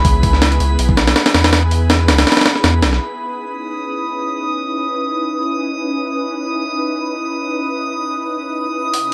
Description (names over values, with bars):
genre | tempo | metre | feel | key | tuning
drum and bass, jungle | 162 BPM | 4/4 | swing 54% on 16ths | C# minor | A4 = 440 Hz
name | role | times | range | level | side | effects
ethereal airy pad | sustained chords | 0.0-9.1 s | B3 to B4 | -25 LUFS | equal | ensemble chorus, built-in reverb
saturated sub bass | bass | 0.0-3.0 s | B1 to E2 | -17 LUFS | equal | none
breakbeat sampler-style drum kit | drums | 0.0-3.0, 8.9-9.0 s | hi-hat, kick drum, snare drum | -16 LUFS | equal | small room ambience
drifting glass-harmonics texture | texture | 0.0-9.1 s | B5 to D#6 | -25 LUFS | equal | chorus, built-in reverb
room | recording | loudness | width
moderate plate reverb, RT60 2.0 s | vinyl crackle | -17 LUFS | mono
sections
0.0-3.0 A section; 3.0-9.1 B section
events
drop 0.0-3.0; filter sweep on ambient pad 3.0-9.1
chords
0.0 E; 3.0 C#m9